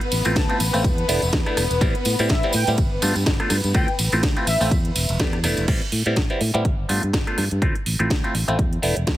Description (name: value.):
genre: filtered disco house.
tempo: 124 BPM.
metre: 4/4.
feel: swing 56% on 16ths.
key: A minor.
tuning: A4 = 441 Hz.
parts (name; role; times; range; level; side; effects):
dark studio string section; sustained chords; 0.0-5.7 s; B3 to B4; -28 LUFS; left 1 dB; sidechain pumping, low-pass filter.
house drum kit; drums; 0.0-9.2 s; crash cymbal, hi-hat, ride cymbal, rim click, snare drum; -26 LUFS; right 1 dB; none.
fingered electric bass; bass; 0.1-9.2 s; E1 to A2; -24 LUFS; equal; sidechain pumping, low-pass filter.
tambourine; percussion; 0.1-5.7 s; none; -30 LUFS; left 1 dB; sidechain pumping on perc, low-pass filter on perc.
clav; accompaniment; 0.3-9.0 s; G3 to G4; -25 LUFS; equal; phaser, vintage 12-bit sampler grit, sidechain pumping, low-pass filter.
analog synth brass; melody; 0.4-4.8 s; E5 to A5; -28 LUFS; equal; chorus, vintage 12-bit sampler grit, sidechain pumping, low-pass filter, digital delay.
electronic kick drum; drums; 0.4-9.2 s; none; -22 LUFS; equal; none.
room: little or no reverb.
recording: heavily compressed radio sound.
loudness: -18 LUFS.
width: side -14 dB against mid.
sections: 0.0-5.7 A section; 5.7-9.2 B section.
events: drop 0.0-5.7.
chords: 0.0 Dm7 (rootless); 0.8 E7sus4; 1.8 Am9; 2.8 G7; 3.7 Dm7; 4.7 E7sus4; 5.7 Am9; 6.7 G7; 7.6 Dm7; 8.6 E7sus4.